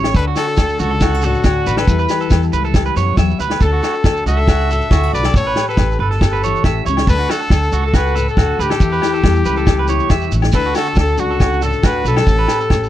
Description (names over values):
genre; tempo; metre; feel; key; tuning
highlife guitar band; 139 BPM; 4/4; straight; D major; A4 = 438 Hz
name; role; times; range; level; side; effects
fingerpicked steel-string acoustic guitar; accompaniment; 0.0-12.9 s; A2 to C#5; -23 LUFS; left 8 dB; none
electric guitar at the edge of break-up; arpeggios; 0.0-12.8 s; F#4 to E5; -22 LUFS; right 8 dB; spring reverb, slapback echo
upright bass; bass; 0.0-12.9 s; G1 to F#2; -18 LUFS; equal; none
vintage drum kit; drums; 0.0-12.8 s; crash cymbal, kick drum, snare drum; -16 LUFS; equal; none
agogo bells; percussion; 0.0-12.8 s; none; -27 LUFS; left 21 dB; none
shekere; percussion; 0.1-12.9 s; none; -24 LUFS; right 2 dB; none
bright trumpet; melody; 0.2-12.9 s; F#4 to E5; -20 LUFS; left 3 dB; none
room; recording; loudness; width
little or no reverb; dry, close 1970s-style studio recording; -13 LUFS; side -12 dB against mid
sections
0.0-10.5 A section; 10.5-12.9 A section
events
none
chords
0.1 D; 1.9 Em; 3.6 D; 5.3 A7; 7.1 D; 8.8 Em; 10.5 D; 12.3 A7